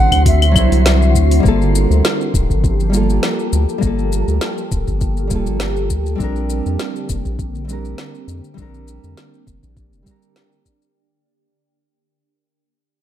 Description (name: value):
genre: sunset chillout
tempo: 101 BPM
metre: 4/4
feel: swing 54% on 16ths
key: G dorian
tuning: A4 = 442 Hz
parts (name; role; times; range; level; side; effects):
- baroque flute; melody; 0.0-1.1 s; E5 to F#5; -20 LUFS; right 2 dB; ping-pong delay
- nylon-string guitar; accompaniment; 0.0-10.9 s; F#3 to C5; -22 LUFS; moving between left 5 dB and right 5 dB; auto-pan, ping-pong delay
- shimmering ambient pad; sustained chords; 0.0-10.9 s; D3 to A4; -24 LUFS; right 1 dB; chorus, built-in reverb, phaser
- round analog bass; bass; 0.0-10.0 s; D1 to F2; -16 LUFS; equal; tube saturation
- wind-like tuned noise texture; texture; 0.0-1.5 s; C5 to C6; -31 LUFS; equal; built-in reverb
- electronic kick drum; drums; 0.1-10.8 s; none; -19 LUFS; equal; none
- smooth R&B drum kit; drums; 0.1-10.9 s; claves, hi-hat, shaker, snare drum; -22 LUFS; left 2 dB; none
room: light reverb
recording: dark, warm production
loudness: -14 LUFS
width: side -11 dB against mid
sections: 0.0-1.4 A section; 1.4-11.0 B section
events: fade-out 1.4-11.0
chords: 0.0 D9; 1.4 Gm9; 6.2 Bb69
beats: 0.26 0.85 | 1.45 2.04 2.63 3.23 | 3.82 4.42 5.01 5.61 | 6.20 6.79 7.39 7.98 | 8.57 9.17 9.76 10.36